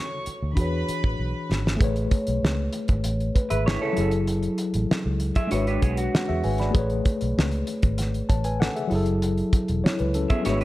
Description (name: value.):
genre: lush 1970s-style soul.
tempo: 97 BPM.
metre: 4/4.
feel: straight.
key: A major.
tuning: A4 = 440 Hz.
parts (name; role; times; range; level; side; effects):
warm studio violin section; second line; 0.0-1.5 s; B4 to C#6; -33 LUFS; right 1 dB; none.
mellow tine electric piano; accompaniment; 0.0-10.6 s; E3 to B5; -27 LUFS; left 2 dB; medium stereo tremolo.
vintage muted fingered electric bass; bass; 0.3-10.6 s; E1 to E2; -26 LUFS; equal; none.
cloth-damped thuddy drum kit; drums; 0.3-10.6 s; hi-hat, kick drum, snare drum; -24 LUFS; equal; none.
vibraphone with medium hard mallets; texture; 1.8-3.9 s; C#5; -37 LUFS; equal; none.
electric guitar through a small old amp; riff; 3.5-10.6 s; B3 to E5; -29 LUFS; right 3 dB; spring reverb.
room: studio ambience.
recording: none.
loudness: -22 LUFS.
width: side -17 dB against mid.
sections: 0.0-1.8 A section; 1.8-10.6 B section.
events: drum fill 1.2-1.8.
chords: 0.0 A6; 0.6 E13; 1.8 Amaj9; 4.0 F#m9; 5.5 E13/G#; 6.7 Amaj9; 8.9 F#m9.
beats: 0.57 1.19 | 1.81 2.43 3.04 3.66 | 4.28 4.89 5.51 6.13 | 6.75 7.36 7.98 8.60 | 9.22 9.83 10.45.